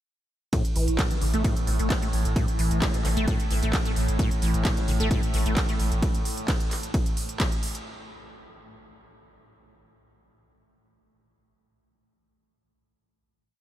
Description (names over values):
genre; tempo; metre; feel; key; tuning
driving peak-time techno; 131 BPM; 4/4; straight; unclear; A4 = 440 Hz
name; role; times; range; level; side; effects
acid bass, saw; riff; 0.5-5.7 s; A2 to A3; -31 LUFS; equal; ensemble chorus, sidechain pumping, ping-pong delay
overtone-sweeping drone; drone; 0.9-6.1 s; A2; -34 LUFS; right 2 dB; chorus, built-in reverb, sidechain pumping
electronic kick drum; drums; 0.5-7.5 s; none; -26 LUFS; equal; none
techno drum kit; drums; 0.5-7.8 s; handclaps, hi-hat, ride cymbal; -32 LUFS; right 1 dB; none
saturated sub bass; bass; 0.8-6.0 s; A1; -28 LUFS; equal; overdrive, sidechain pumping, low-pass filter
room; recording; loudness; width
moderate cathedral reverb, RT60 5.5 s; dreamy mix soaked in reverb; -23 LUFS; side -13 dB against mid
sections
0.5-7.9 drop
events
drop 0.5-7.9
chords
0.5 A5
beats
| 0.53 0.99 1.44 1.90 | 2.36 2.82 3.28 3.73 | 4.19 4.65 5.11 5.57 | 6.02 6.48 6.94 7.40